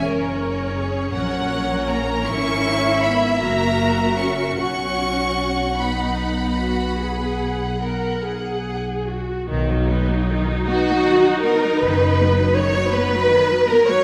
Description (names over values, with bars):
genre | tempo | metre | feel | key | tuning
classical, slow romantic movement for string orchestra | 46-56 BPM (dotted quarters) | 12/8 | rubato | B major | A4 = 440 Hz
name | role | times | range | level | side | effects
rich studio violin section | melody | 0.0-14.0 s | F#4 to C#6 | -28 LUFS | equal | none
rich chamber violin section | second line | 0.0-14.0 s | F#4 to F#5 | -27 LUFS | equal | none
rich chamber viola section | accompaniment | 0.0-14.0 s | D#3 to A#4 | -26 LUFS | equal | none
clear chamber double bass section | bass | 0.0-12.8 s | F#1 to B1 | -27 LUFS | equal | none
warm chamber cello section | bass | 0.0-14.0 s | F#3 to C#5 | -24 LUFS | equal | none
room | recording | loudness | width
wet recital hall reverb, RT60 1.6 s | none | -20 LUFS | mono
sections
0.0-9.5 A section; 9.5-14.0 B section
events
none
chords
0.1 F#; 2.3 E/G#; 3.4 F#7; 4.6 B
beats
| 0.05 1.15 2.27 3.42 | 4.58 5.81 7.01 8.22 | 9.48 10.68 11.82 12.95